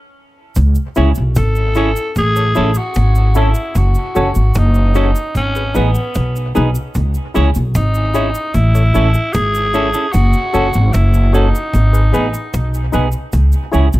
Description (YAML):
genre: roots reggae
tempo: 75 BPM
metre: 4/4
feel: straight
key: C# minor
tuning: A4 = 440 Hz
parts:
  - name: upright bass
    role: bass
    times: 0.6-14.0 s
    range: F#1 to C#2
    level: -13 LUFS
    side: equal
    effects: none
  - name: cajon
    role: drums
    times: 0.6-14.0 s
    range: none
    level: -23 LUFS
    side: equal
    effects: dub echo
  - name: cabasa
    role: percussion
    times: 0.6-14.0 s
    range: none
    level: -34 LUFS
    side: right 4 dB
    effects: none
  - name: semi-hollow electric guitar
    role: accompaniment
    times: 1.0-13.9 s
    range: B3 to A4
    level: -23 LUFS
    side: right 5 dB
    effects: dub echo, plate reverb
  - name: percussive organ stab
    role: stabs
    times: 1.0-13.9 s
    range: D#4 to C#5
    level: -21 LUFS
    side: left 4 dB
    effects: chorus, plate reverb
  - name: raspy tenor saxophone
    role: melody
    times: 1.4-12.9 s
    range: B3 to A4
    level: -20 LUFS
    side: equal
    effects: dub echo, plate reverb
room: light reverb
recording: none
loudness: -12 LUFS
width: side -17 dB against mid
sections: 0.6-14.0 A section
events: stop 0.0-0.6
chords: 0.0 N.C.; 0.6 C#m; 2.2 A; 3.8 F#m; 5.4 G#m; 7.0 C#m; 8.5 A; 10.1 F#m; 11.7 G#m; 13.3 C#m